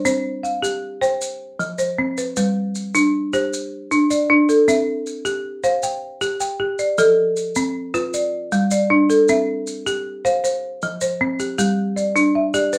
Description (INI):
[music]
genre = southern african traditional, mbira-style interlocking cycle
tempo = 104 BPM (dotted quarters)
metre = 12/8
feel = straight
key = G mixolydian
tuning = A4 = 445 Hz
[part]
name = folk marimba with hard mallets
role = arpeggios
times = 0.0-12.8 s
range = F3 to G5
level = -20 LUFS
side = equal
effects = none
[part]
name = maracas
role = percussion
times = 0.1-12.8 s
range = none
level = -32 LUFS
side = equal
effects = none
[sound]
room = wet studio reverb, RT60 0.5 s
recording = heard from further back in the room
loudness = -20 LUFS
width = mono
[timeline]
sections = 0.0-2.4 A section; 2.4-11.6 B section; 11.6-12.8 A section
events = none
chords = 0.1 C5; 1.2 F5; 2.4 G; 4.7 C; 7.0 F; 8.1 G; 9.3 C; 10.4 F5; 11.6 G5